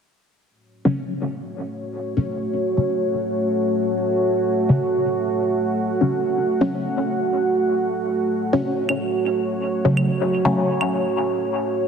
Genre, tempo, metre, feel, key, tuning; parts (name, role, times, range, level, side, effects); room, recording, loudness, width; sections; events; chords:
dub techno; 125 BPM; 4/4; straight; F# minor; A4 = 440 Hz
deep dark ambient pad; sustained chords; 1.6-11.9 s; A3 to F#5; -21 LUFS; right 2 dB; chorus, built-in reverb
filtered dub chord stab; stabs; 0.9-10.7 s; C#3 to C#4; -22 LUFS; left 1 dB; phaser, cassette tape, dub echo
claves; percussion; 8.9-10.9 s; -30 LUFS; right 3 dB; dub echo
wet lush hall reverb, RT60 1.9 s; heavily compressed radio sound; -19 LUFS; side -6 dB against mid
0.5-11.9 A section
filter sweep on synth stab 0.5-11.9
0.5 F#m